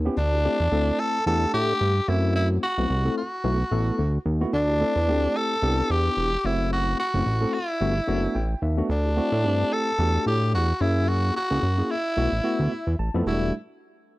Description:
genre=early-eighties boogie funk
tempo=110 BPM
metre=4/4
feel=swing 56% on 16ths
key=E minor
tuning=A4 = 442 Hz
part: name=fat analog bass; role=bass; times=0.0-13.5 s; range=E1 to A2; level=-23 LUFS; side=equal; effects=none
part: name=tine electric piano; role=accompaniment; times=0.1-13.5 s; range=G3 to A5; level=-28 LUFS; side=left 1 dB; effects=medium stereo tremolo
part: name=growling tenor saxophone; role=melody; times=0.2-13.5 s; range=D4 to A4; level=-25 LUFS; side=equal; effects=slapback echo
room=little or no reverb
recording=dry, close 1970s-style studio recording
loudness=-21 LUFS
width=side -19 dB against mid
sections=0.0-13.3 A section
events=tine electric piano fill 8.1-8.9, 12.4-13.3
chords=0.2 D7sus4; 1.3 Em11; 2.1 F#m7b5; 3.4 B7sus4; 4.5 D7sus4; 5.6 Cmaj7; 6.4 F#m7b5; 7.8 Gmaj7; 8.9 D7sus4; 10.0 Em11; 10.8 F#7; 12.2 B7sus4; 13.3 Em11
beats=| 0.17 0.72 1.26 1.81 | 2.35 2.90 3.45 3.99 | 4.54 5.08 5.63 6.17 | 6.72 7.26 7.81 8.36 | 8.90 9.45 9.99 10.54 | 11.08 11.63 12.17 12.72 | 13.26

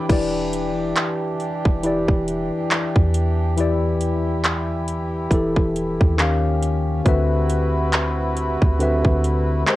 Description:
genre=contemporary R&B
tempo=69 BPM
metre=4/4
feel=swing 58% on 16ths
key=E minor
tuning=A4 = 440 Hz
part: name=tine electric piano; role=accompaniment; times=0.0-9.8 s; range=D3 to E#5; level=-22 LUFS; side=left 2 dB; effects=auto-pan, cassette tape
part: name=pedal harmonium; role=sustained chords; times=0.0-9.8 s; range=C3 to B4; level=-28 LUFS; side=right 1 dB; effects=stereo widening, sidechain pumping, cassette tape
part: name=fingerpicked steel-string acoustic guitar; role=arpeggios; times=0.0-0.7 s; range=E3 to B4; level=-31 LUFS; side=right 4 dB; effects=cassette tape, tape echo
part: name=soft 808-style bass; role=bass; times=0.1-9.6 s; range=E1 to E2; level=-23 LUFS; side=equal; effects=none
part: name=trap drum kit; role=drums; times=0.1-9.8 s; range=crash cymbal, handclaps, hi-hat, kick drum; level=-20 LUFS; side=equal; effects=overdrive, cassette tape
room=little or no reverb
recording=home recording on cassette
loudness=-18 LUFS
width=side -16 dB against mid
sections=0.1-9.8 A section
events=none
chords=0.1 Em7; 6.2 D#9; 7.1 D13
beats=| 0.10 0.96 1.83 2.71 | 3.57 4.44 5.31 6.18 | 7.05 7.92 8.79 9.66

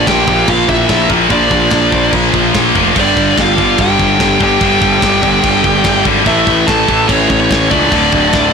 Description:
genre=heavy metal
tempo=145 BPM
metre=4/4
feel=straight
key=unclear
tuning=A4 = 440 Hz
part: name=high-gain lead guitar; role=melody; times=0.0-8.5 s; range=C#5 to A5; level=-15 LUFS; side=equal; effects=distortion
part: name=high-gain lead guitar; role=second line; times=0.0-8.5 s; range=C#4 to A4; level=-21 LUFS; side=right 2 dB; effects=distortion, ping-pong delay
part: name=heavy high-gain guitar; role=riff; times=0.0-8.5 s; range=D2 to Bb3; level=-16 LUFS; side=left 15 dB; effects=distortion
part: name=high-gain distorted guitar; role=riff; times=0.0-8.5 s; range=D2 to Bb3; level=-17 LUFS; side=equal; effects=distortion
part: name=scooped high-gain guitar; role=riff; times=0.0-8.5 s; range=D2 to Bb3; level=-18 LUFS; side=right 14 dB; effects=distortion
part: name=fuzz picked electric bass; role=bass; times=0.0-8.5 s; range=D1 to C#2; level=-17 LUFS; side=equal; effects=overdrive
part: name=tight metal drum kit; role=drums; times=0.1-8.4 s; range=crash cymbal, kick drum, snare drum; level=-18 LUFS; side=equal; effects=none
room=little or no reverb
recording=blown-out, overdriven recording, overdrive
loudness=-9 LUFS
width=side -6 dB against mid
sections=0.0-8.5 A section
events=none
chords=0.0 Bb; 3.0 G5; 6.3 A; 7.9 D5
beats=0.07 0.48 0.89 | 1.30 1.72 2.13 2.54 | 2.96 3.37 3.78 4.20 | 4.61 5.02 5.44 5.85 | 6.26 6.68 7.09 7.50 | 7.92 8.33

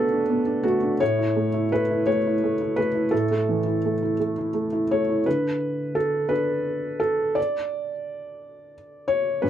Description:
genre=neoclassical minimalist piano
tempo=57 BPM (dotted quarters)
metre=6/8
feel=rubato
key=unclear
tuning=A4 = 438 Hz
part: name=felt-muted upright piano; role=solo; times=0.0-9.5 s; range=G2 to D5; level=-22 LUFS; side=equal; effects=none
room=light reverb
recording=dry, close 1970s-style studio recording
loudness=-21 LUFS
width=side -10 dB against mid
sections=0.0-5.3 A section; 5.3-9.5 B section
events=none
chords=0.0 Bm7; 1.0 A; 5.3 N.C.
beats=| 1.00 2.06 | 3.11 4.18 | 5.25 6.30 | 7.37 8.40 | 9.43

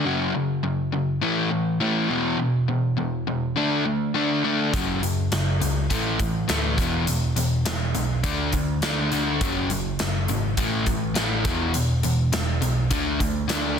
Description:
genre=hard rock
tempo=103 BPM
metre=4/4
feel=straight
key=unclear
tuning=A4 = 440 Hz
part: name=crunchy overdriven guitar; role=riff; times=0.0-13.8 s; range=E2 to D4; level=-27 LUFS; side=right 9 dB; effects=none
part: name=overdriven semi-hollow guitar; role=riff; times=0.0-13.8 s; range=E2 to D4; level=-25 LUFS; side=left 8 dB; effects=none
part: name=overdriven picked electric bass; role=bass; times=4.7-13.8 s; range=E1 to D2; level=-27 LUFS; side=right 1 dB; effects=none
part: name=big rock drum kit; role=drums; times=4.7-13.6 s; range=hi-hat, kick drum, snare drum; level=-27 LUFS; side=equal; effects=none
room=light reverb, small room ambience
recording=dense, heavily limited modern master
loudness=-21 LUFS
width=side -7 dB against mid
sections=0.0-13.8 A section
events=none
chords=0.1 F#5; 1.2 A5; 2.1 E5; 3.6 D5; 4.7 F#5; 5.9 A5; 6.8 E5; 8.2 D5; 9.4 F#5; 10.6 A5; 11.5 E5; 12.9 D5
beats=| 0.05 0.64 1.22 1.81 | 2.39 2.98 3.56 4.15 | 4.73 5.32 5.90 6.49 | 7.07 7.66 8.24 8.83 | 9.41 10.00 10.58 11.16 | 11.75 12.33 12.92 13.50

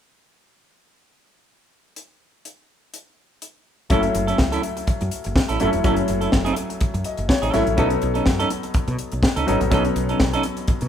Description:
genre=disco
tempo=124 BPM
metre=4/4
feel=straight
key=F# dorian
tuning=A4 = 444 Hz
part: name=tight funk drum kit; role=drums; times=2.0-10.9 s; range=hi-hat, kick drum, snare drum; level=-22 LUFS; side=equal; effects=none
part: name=clear concert grand piano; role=accompaniment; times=3.9-10.9 s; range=F#3 to D#5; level=-23 LUFS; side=left 2 dB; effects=none
part: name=semi-hollow electric guitar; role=accompaniment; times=3.9-10.9 s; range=C#4 to A4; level=-25 LUFS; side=right 4 dB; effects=none
part: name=woody fretless electric bass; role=bass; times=3.9-10.9 s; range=E1 to B2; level=-26 LUFS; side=equal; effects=none
room=moderate large studio reverb, RT60 1.1 s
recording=band playing live in one room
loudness=-18 LUFS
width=side -9 dB against mid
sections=2.0-3.9 A section; 3.9-10.9 B section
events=grand piano fill 6.8-7.8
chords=2.0 N.C.; 3.9 F#m7; 7.8 B9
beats=| 1.97 2.45 2.94 3.42 | 3.91 4.39 4.88 5.36 | 5.84 6.33 6.81 7.30 | 7.78 8.27 8.75 9.23 | 9.72 10.20 10.69

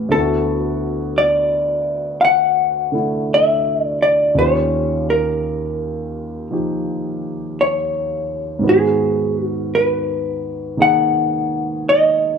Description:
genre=jazz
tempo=56 BPM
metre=4/4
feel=swing 66% on 8ths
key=unclear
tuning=A4 = 441 Hz
part: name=vintage hollow-body jazz guitar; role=melody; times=0.0-12.4 s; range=G#4 to F#5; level=-17 LUFS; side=left 1 dB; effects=plate reverb
part: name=warm concert grand piano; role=accompaniment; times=0.0-12.4 s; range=D2 to G#4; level=-22 LUFS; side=right 1 dB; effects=none
room=moderate large studio reverb, RT60 0.9 s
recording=none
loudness=-16 LUFS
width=side -6 dB against mid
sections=0.0-12.4 A section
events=none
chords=0.1 D69; 4.4 D#7; 8.6 G#m9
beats=| 0.11 1.17 2.23 3.29 | 4.36 5.42 6.49 7.56 | 8.64 9.71 10.78 11.85

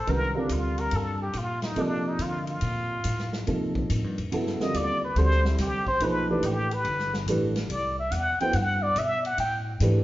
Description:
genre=modal jazz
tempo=142 BPM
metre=4/4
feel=swing 67% on 8ths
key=C dorian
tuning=A4 = 440 Hz
part: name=trumpet with plunger mute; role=melody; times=0.0-9.6 s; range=D4 to G5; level=-28 LUFS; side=equal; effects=none
part: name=upright bass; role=bass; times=0.0-10.0 s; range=G1 to D3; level=-28 LUFS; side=equal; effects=none
part: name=warm baby grand piano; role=accompaniment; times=0.1-10.0 s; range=C3 to Eb5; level=-29 LUFS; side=right 1 dB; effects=none
part: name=swinging big-band drum kit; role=drums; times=0.1-9.9 s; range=hi-hat, kick drum, ride cymbal, snare drum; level=-37 LUFS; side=equal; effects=none
room=wet large studio reverb, RT60 1.3 s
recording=heard from further back in the room, nothing above 7.5 kHz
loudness=-24 LUFS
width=side -16 dB against mid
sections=0.0-10.0 A section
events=muted trumpet solo 0.0-10.0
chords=0.0 C13sus4; 5.2 D13sus4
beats=| 0.08 0.50 0.93 1.35 | 1.77 2.20 2.62 3.04 | 3.47 3.89 4.32 4.74 | 5.16 5.59 6.01 6.43 | 6.86 7.28 7.70 8.12 | 8.54 8.97 9.39 9.81

